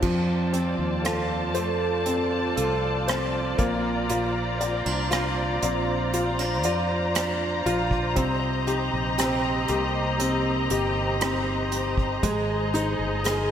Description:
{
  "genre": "pop ballad",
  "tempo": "59 BPM",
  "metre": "4/4",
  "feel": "straight",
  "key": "unclear",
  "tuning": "A4 = 441 Hz",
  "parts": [
    { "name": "warm grand piano", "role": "accompaniment", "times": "0.0-13.5 s", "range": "F3 to D5", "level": "-28 LUFS", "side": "left 2 dB", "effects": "none" },
    { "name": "muted studio string section", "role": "sustained chords", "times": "0.0-13.5 s", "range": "F4 to Bb5", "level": "-28 LUFS", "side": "left 1 dB", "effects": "none" },
    { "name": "picked steel-string acoustic guitar", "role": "arpeggios", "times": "0.0-13.5 s", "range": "F2 to Bb4", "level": "-30 LUFS", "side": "right 5 dB", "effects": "none" },
    { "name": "fretless electric bass", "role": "bass", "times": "0.0-13.5 s", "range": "G1 to F2", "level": "-30 LUFS", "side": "equal", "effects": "none" },
    { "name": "unplugged drum kit", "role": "drums", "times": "0.0-13.5 s", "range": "crash cymbal, hi-hat, kick drum, rim click", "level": "-30 LUFS", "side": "right 1 dB", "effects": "gated reverb" }
  ],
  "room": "wet lush hall reverb, RT60 2.7 s",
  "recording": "bright 1980s-style digital production",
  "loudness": "-22 LUFS",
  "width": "side -9 dB against mid",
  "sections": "0.0-13.5 A section",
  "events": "none",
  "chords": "0.0 F6; 3.6 Bbadd9; 8.2 Cm7; 12.2 Abadd9",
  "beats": "| 0.03 1.05 2.07 3.08 | 4.10 5.12 6.14 7.15 | 8.17 9.19 10.20 11.22 | 12.24 13.25"
}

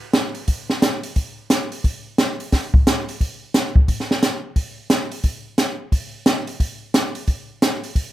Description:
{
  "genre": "jazz",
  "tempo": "177 BPM",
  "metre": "4/4",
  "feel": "swing 63% on 8ths",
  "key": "none",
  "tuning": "none",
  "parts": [
    { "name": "open jazz drum kit", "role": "drums", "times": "0.1-8.1 s", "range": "hi-hat, kick drum, snare drum", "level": "-18 LUFS", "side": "equal", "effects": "none" }
  ],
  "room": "light reverb",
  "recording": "none",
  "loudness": "-18 LUFS",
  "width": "side -14 dB against mid",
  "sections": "0.0-8.1 A section",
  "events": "none",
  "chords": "none",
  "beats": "0.15 | 0.49 0.83 1.17 1.51 | 1.85 2.19 2.53 2.87 | 3.21 3.55 3.89 4.23 | 4.57 4.90 5.24 5.58 | 5.92 6.26 6.60 6.94 | 7.28 7.62 7.96"
}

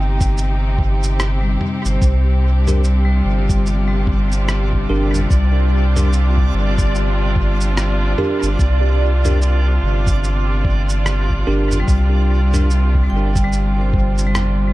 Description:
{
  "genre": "ambient dub",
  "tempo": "73 BPM",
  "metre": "4/4",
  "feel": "swing 60% on 16ths",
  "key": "unclear",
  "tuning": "A4 = 439 Hz",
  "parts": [
    { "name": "rich studio string section", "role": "sustained chords", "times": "0.0-14.7 s", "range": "C3 to G4", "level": "-25 LUFS", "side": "right 1 dB", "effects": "none" },
    { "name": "vibraphone with hard mallets", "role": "arpeggios", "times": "0.0-14.7 s", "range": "G3 to G5", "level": "-25 LUFS", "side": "left 3 dB", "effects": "analog delay" },
    { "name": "soft dub sub bass", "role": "bass", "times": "0.0-14.7 s", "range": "G1 to C2", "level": "-16 LUFS", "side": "equal", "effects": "none" },
    { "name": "electronic kick drum", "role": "drums", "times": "0.2-14.1 s", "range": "none", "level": "-19 LUFS", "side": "equal", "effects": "none" },
    { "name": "lo-fi sampler-style drum kit", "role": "drums", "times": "0.2-14.5 s", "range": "rim click, shaker, toms", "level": "-26 LUFS", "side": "right 1 dB", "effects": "dub echo" },
    { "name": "backwards swelling texture", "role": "texture", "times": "3.5-14.7 s", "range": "D5", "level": "-29 LUFS", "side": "right 4 dB", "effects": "built-in reverb" },
    { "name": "bell-like tine electric piano", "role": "stabs", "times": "2.7-12.7 s", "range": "D4 to Bb4", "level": "-25 LUFS", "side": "right 1 dB", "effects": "phaser, dub echo" }
  ],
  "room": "little or no reverb",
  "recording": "echo-heavy mix",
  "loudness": "-14 LUFS",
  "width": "side -17 dB against mid",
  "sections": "0.0-14.7 A section",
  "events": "none",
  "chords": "0.0 Cm; 2.0 Bb6 (rootless)",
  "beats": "0.37 1.20 | 2.02 2.84 3.66 4.48 | 5.30 6.13 6.95 7.77 | 8.59 9.41 10.24 11.06 | 11.88 12.70 13.52 14.35"
}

